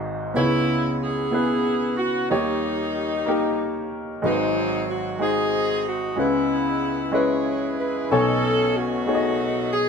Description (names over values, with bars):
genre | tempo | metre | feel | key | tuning
gospel | 62 BPM (dotted quarters) | 6/8 | straight | C# minor | A4 = 440 Hz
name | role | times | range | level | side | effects
warm upright piano | accompaniment | 0.0-9.9 s | G#1 to G#5 | -23 LUFS | left 1 dB | none
edgy saxophone section | melody | 0.4-9.9 s | F#3 to C#5 | -24 LUFS | equal | none
room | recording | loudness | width
wet studio reverb, RT60 0.6 s | band playing live in one room | -20 LUFS | side -6 dB against mid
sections
0.0-8.1 A section; 8.1-9.9 B section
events
none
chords
0.4 C#m7; 2.3 D#7; 4.2 G#7; 6.2 C#m7; 8.1 B13